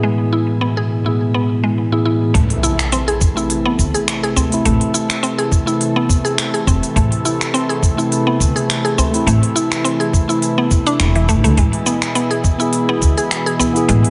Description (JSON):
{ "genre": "organic downtempo", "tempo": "104 BPM", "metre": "4/4", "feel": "swing 54% on 16ths", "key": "A harmonic minor", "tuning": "A4 = 437 Hz", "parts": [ { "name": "mellow tine electric piano", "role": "accompaniment", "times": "0.0-14.1 s", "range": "A2 to G#4", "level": "-23 LUFS", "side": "equal", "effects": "sidechain pumping, tape echo" }, { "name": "warm analog pad", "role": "sustained chords", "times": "0.0-14.1 s", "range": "B2 to A4", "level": "-25 LUFS", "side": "equal", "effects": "chorus, sidechain pumping, shimmer reverb" }, { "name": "mallet-like synth pluck", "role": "arpeggios", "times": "0.0-14.1 s", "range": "E3 to G#4", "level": "-22 LUFS", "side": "equal", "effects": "chorus, tape echo, shimmer reverb" }, { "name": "upright bass", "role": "bass", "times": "2.3-14.0 s", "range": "E1 to D2", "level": "-19 LUFS", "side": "equal", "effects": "sidechain pumping" }, { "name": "electronic kick drum", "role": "drums", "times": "2.3-13.1 s", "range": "none", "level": "-18 LUFS", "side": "equal", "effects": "none" }, { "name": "organic electronic drum kit", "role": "drums", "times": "2.3-14.1 s", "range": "finger snaps, hi-hat, shaker", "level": "-24 LUFS", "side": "equal", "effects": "none" }, { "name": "udu", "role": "percussion", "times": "2.3-14.0 s", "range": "none", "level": "-25 LUFS", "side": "equal", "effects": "none" }, { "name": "impact", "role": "sound effects", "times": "2.3-4.7 s", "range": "none", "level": "-26 LUFS", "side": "equal", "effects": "none" } ], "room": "moderate echo chamber reverb, RT60 1.6 s", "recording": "nothing above 10.8 kHz", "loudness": "-16 LUFS", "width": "mono", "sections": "0.0-2.3 A section; 2.3-14.1 B section", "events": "impact 2.3-4.7", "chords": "0.0 E/A; 2.3 Am; 11.6 E", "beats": "| 0.04 0.61 1.19 1.77 | 2.35 2.92 3.50 4.08 | 4.65 5.23 5.81 6.38 | 6.96 7.54 8.12 8.69 | 9.27 9.85 10.42 11.00 | 11.58 12.15 12.73 13.31 | 13.88" }